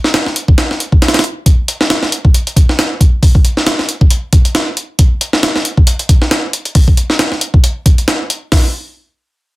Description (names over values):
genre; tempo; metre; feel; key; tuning
breakbeat; 136 BPM; 4/4; swing 56% on 16ths; none; none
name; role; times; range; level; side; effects
breakbeat sampler-style drum kit; drums; 0.0-8.6 s; hi-hat, kick drum, snare drum; -10 LUFS; equal; none
room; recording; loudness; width
light reverb; dense, heavily limited modern master; -10 LUFS; side -20 dB against mid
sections
0.0-1.5 A section; 1.5-8.5 B section; 8.5-9.6 C section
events
drop 0.0-1.5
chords
none